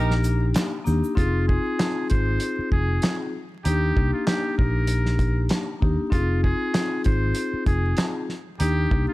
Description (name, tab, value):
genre	hip hop, boom-bap hip-hop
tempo	97 BPM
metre	4/4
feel	swing 54% on 16ths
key	F dorian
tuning	A4 = 441 Hz
part	trumpet with metal mute	melody	0.0-9.1 s	F4 to C5	-31 LUFS	right 1 dB	high-pass filter, low-pass filter, ping-pong delay
part	vibraphone with medium mallets	accompaniment	0.0-9.1 s	Bb3 to Ab4	-27 LUFS	left 3 dB	high-pass filter, low-pass filter
part	fingered electric bass	bass	0.0-9.1 s	F1 to Eb2	-23 LUFS	equal	none
part	cloth-damped thuddy drum kit	drums	0.1-9.1 s	handclaps, hi-hat, kick drum, shaker, snare drum	-24 LUFS	equal	none
part	egg shaker	percussion	0.2-1.2 s	none	-47 LUFS	right 6 dB	none
room	studio reverb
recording	vinyl crackle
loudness	-20 LUFS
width	side -18 dB against mid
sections	0.0-1.2 A section; 1.2-9.1 B section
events	break 0.0-1.2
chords	0.0 Ebmaj7; 1.2 Fm7; 3.6 Ebmaj7; 6.1 Fm7; 8.6 Ebmaj7